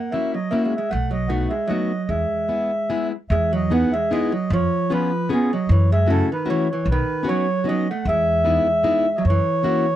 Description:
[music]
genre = musette waltz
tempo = 152 BPM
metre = 3/4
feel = swing 54% on 8ths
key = E major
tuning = A4 = 439 Hz
[part]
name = mellow accordion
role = melody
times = 0.0-10.0 s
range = G#4 to F#5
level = -23 LUFS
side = equal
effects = slapback echo
[part]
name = vintage hollow-body jazz guitar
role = second line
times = 0.0-10.0 s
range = B2 to B3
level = -24 LUFS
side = right 3 dB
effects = none
[part]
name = fingerpicked plugged-in steel-string acoustic guitar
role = accompaniment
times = 0.1-9.9 s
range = G#3 to G#4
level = -23 LUFS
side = left 4 dB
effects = none
[part]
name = upright bass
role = bass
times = 0.9-9.4 s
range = B1 to F#2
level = -21 LUFS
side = equal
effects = none
[sound]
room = light reverb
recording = dry, close 1970s-style studio recording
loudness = -18 LUFS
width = side -12 dB against mid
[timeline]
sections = 0.0-3.3 A section; 3.3-10.0 A section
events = none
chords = 0.0 F#7; 0.9 B7; 2.1 E; 3.3 Emaj7; 4.5 C#7/E#; 5.7 F#m7; 6.9 Badd9; 8.1 Emaj7; 9.2 F#7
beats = 0.12 0.52 | 0.91 1.30 1.70 | 2.10 2.49 2.90 | 3.30 3.70 4.10 | 4.50 4.89 5.28 | 5.67 6.07 6.46 | 6.86 7.25 7.65 | 8.05 8.45 8.85 | 9.25 9.64

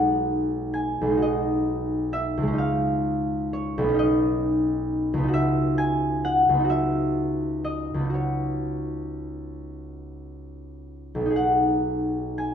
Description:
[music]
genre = classical, solo harp piece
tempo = 34-46 BPM (dotted quarters)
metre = 6/8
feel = rubato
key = unclear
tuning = A4 = 441 Hz
[part]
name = concert harp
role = solo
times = 0.0-12.5 s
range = B1 to G#5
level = -22 LUFS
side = equal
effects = none
[sound]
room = wet recital hall reverb, RT60 1.5 s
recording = none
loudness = -22 LUFS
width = side -8 dB against mid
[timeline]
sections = 0.0-12.5 A section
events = none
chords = 0.0 B6; 2.6 C#add9; 4.0 Badd9; 5.3 C#m11; 11.4 B6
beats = 1.21 | 2.59 3.99 | 5.33 6.68 | 8.11 9.66 | 11.36

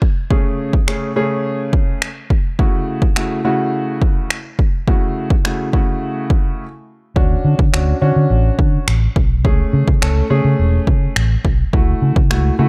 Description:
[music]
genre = dance-pop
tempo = 105 BPM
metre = 4/4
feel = straight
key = F# minor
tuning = A4 = 439 Hz
[part]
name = deep house drum kit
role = drums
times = 0.0-12.4 s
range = finger snaps, kick drum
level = -18 LUFS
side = equal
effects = overdrive
[part]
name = warm concert grand piano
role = accompaniment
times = 0.3-12.7 s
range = C#3 to A4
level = -23 LUFS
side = equal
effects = sidechain pumping
[part]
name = vintage muted fingered electric bass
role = bass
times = 7.2-12.7 s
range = E1 to D3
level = -18 LUFS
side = equal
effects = sidechain pumping
[sound]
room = little or no reverb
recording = dark, warm production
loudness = -16 LUFS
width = mono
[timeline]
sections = 0.0-12.7 A section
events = break 6.6-7.2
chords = 0.3 Amaj7/C#; 2.6 F#m7/C#; 7.2 Dmaj7; 9.4 Amaj7/C#; 11.7 F#m7/C#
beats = | 0.30 0.88 1.45 2.02 | 2.59 3.16 3.73 4.30 | 4.88 5.45 6.02 6.59 | 7.16 7.73 8.30 8.88 | 9.45 10.02 10.59 11.16 | 11.73 12.30

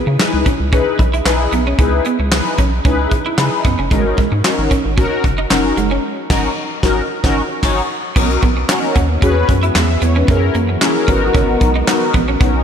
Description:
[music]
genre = early-eighties boogie funk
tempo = 113 BPM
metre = 4/4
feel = straight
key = unclear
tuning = A4 = 440 Hz
[part]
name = electric guitar at the edge of break-up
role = riff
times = 0.0-12.5 s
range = G#3 to E4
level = -22 LUFS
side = right 5 dB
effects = tube saturation, ensemble chorus, slapback echo
[part]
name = rubbery square bass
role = bass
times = 0.1-12.6 s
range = F#1 to C#3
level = -18 LUFS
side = equal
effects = none
[part]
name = mellow synth brass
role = accompaniment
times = 0.2-12.6 s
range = B3 to E5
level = -18 LUFS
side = left 3 dB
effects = chorus, phaser, slapback echo
[part]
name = soft brush drum kit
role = drums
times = 0.2-12.5 s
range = crash cymbal, handclaps, hi-hat, kick drum, snare drum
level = -17 LUFS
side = equal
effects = none
[part]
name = soft string machine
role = sustained chords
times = 8.5-12.6 s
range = D#3 to A#4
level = -24 LUFS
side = equal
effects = ensemble chorus
[sound]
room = moderate lush hall reverb, RT60 3.0 s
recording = big arena sound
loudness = -13 LUFS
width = side -8 dB against mid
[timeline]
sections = 0.0-8.2 A section; 8.2-12.6 B section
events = band accent 6.0-8.2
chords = 0.0 C#m9; 3.9 G#9sus4; 8.2 Bmaj9; 9.2 E69; 10.3 F#7; 11.1 G#m9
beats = 0.20 0.73 1.26 | 1.79 2.32 2.85 3.38 | 3.91 4.44 4.97 5.50 | 6.04 6.57 7.10 7.63 | 8.16 8.69 9.22 9.75 | 10.28 10.81 11.35 11.88 | 12.41

